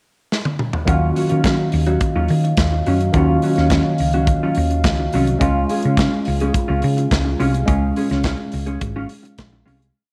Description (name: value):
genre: disco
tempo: 106 BPM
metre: 4/4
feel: straight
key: Eb minor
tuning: A4 = 440 Hz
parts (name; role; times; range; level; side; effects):
- modern studio drum kit; drums; 0.3-9.9 s; hi-hat, kick drum, snare drum, toms; -24 LUFS; equal; none
- mellow electric guitar; accompaniment; 0.9-9.9 s; Gb3 to Ab4; -25 LUFS; equal; analog chorus
- tine electric piano; accompaniment; 0.9-10.0 s; Eb3 to Ab4; -25 LUFS; equal; overdrive, phaser
- dark French horn section; sustained chords; 0.9-9.9 s; Gb3 to F5; -28 LUFS; equal; none
- hollow-body short-scale fingered electric bass; bass; 0.9-9.9 s; Ab1 to Eb3; -22 LUFS; equal; none
room: light reverb, studio ambience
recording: none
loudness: -18 LUFS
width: mono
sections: 0.0-0.9 pickup bar; 0.9-10.0 groove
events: drum fill 0.3-0.9; fade-out 7.7-10.0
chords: 0.0 N.C.; 0.9 Ebm9; 5.4 Db